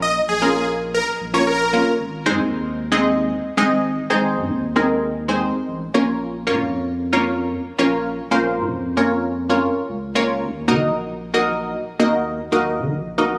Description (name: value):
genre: dance-pop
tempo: 114 BPM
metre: 4/4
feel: straight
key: unclear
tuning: A4 = 439 Hz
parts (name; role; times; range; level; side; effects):
- supersaw chords; melody; 0.0-1.8 s; Ab4 to Eb5; -23 LUFS; equal; tape echo
- punchy chord stab; accompaniment; 0.0-13.4 s; Ab3 to Eb5; -21 LUFS; equal; chorus
- warm sub bass; bass; 0.0-13.4 s; Ab1 to Eb3; -29 LUFS; equal; none
room: moderate plate reverb, RT60 2.6 s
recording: recorded on a phone in the room, club reverb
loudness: -20 LUFS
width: mono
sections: 0.0-2.0 A section; 2.0-13.4 B section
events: none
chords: 0.0 Bbm; 2.0 Ab; 5.9 Bbm; 10.4 Ebm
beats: 0.42 0.94 1.47 | 2.00 2.52 3.05 3.58 | 4.10 4.63 5.16 5.68 | 6.21 6.73 7.26 7.79 | 8.31 8.84 9.37 9.89 | 10.42 10.95 11.47 12.00 | 12.52 13.05